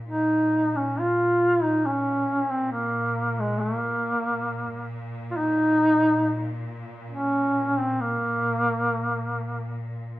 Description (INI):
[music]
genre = caucasian folk, Caucasian lament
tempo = 68 BPM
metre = 3/4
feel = rubato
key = Bb minor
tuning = A4 = 441 Hz
[part]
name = clear studio cello section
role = drone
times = 0.0-10.2 s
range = Bb2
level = -32 LUFS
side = equal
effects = none
[part]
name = warm duduk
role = melody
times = 0.1-9.8 s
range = Ab3 to F4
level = -22 LUFS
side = equal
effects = none
[sound]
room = wet large studio reverb, RT60 1.1 s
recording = band playing live in one room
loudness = -22 LUFS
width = side -16 dB against mid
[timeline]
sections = 0.0-10.2 A section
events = none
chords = none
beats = | 0.10 0.99 1.88 | 2.75 3.63 4.51 | 5.39 6.26 7.13 | 7.99 8.87 9.78